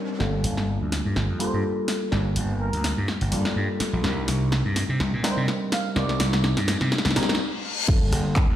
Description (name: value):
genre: filtered disco house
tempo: 125 BPM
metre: 4/4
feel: swing 55% on 16ths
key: G minor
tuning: A4 = 440 Hz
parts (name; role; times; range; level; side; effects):
- overdriven reed electric piano; accompaniment; 0.0-8.6 s; G3 to Bb4; -28 LUFS; equal; phaser, vintage 12-bit sampler grit, sidechain pumping, low-pass filter
- riser and reverse cymbal; sound effects; 0.0-0.2, 7.4-7.9 s; none; -32 LUFS; left 4 dB; none
- gritty slap bass; bass; 0.2-8.6 s; G1 to C3; -24 LUFS; equal; overdrive, sidechain pumping, low-pass filter
- punchy analog drum machine; drums; 0.2-8.5 s; crash cymbal, handclaps, hi-hat, rim click, snare drum; -27 LUFS; equal; sidechain pumping on hats, sidechain pumping on cymbals
- muted trumpet section; melody; 1.4-6.4 s; Bb4 to F5; -34 LUFS; right 2 dB; vintage 12-bit sampler grit, sidechain pumping, low-pass filter, ping-pong delay
- electronic kick drum; drums; 7.9-8.5 s; none; -19 LUFS; equal; none
room: light reverb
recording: played on a big sound system in a bare room, stone room reverb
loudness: -22 LUFS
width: side -11 dB against mid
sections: 0.2-7.9 A section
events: riser 0.0; build-up 0.2-7.9; drum fill 0.2-7.4; filter sweep 0.2-7.9; stop 7.4-7.9; reverse cymbal 7.4-7.9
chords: 0.2 Gm9; 4.0 Cm9; 7.9 Gm9